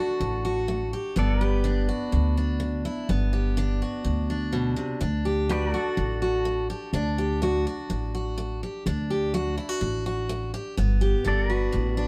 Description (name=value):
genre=honky-tonk and classic country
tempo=125 BPM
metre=4/4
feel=straight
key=G major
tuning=A4 = 439 Hz
part: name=picked steel-string acoustic guitar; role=accompaniment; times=0.0-12.1 s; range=G2 to G4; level=-30 LUFS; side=equal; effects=none
part: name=pedal steel guitar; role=sustained chords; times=0.0-12.1 s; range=F#4 to D5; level=-36 LUFS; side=equal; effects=none
part: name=upright bass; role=bass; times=0.2-12.1 s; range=G1 to D2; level=-29 LUFS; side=equal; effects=none
room=light reverb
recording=band playing live in one room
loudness=-26 LUFS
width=mono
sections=0.0-12.1 A section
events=none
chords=0.0 D; 1.2 G; 5.0 D; 10.8 G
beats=0.20 0.69 | 1.17 1.65 2.13 2.61 | 3.09 3.57 4.05 4.53 | 5.01 5.49 5.97 6.45 | 6.93 7.41 7.89 8.37 | 8.85 9.33 9.81 10.29 | 10.77 11.26 11.73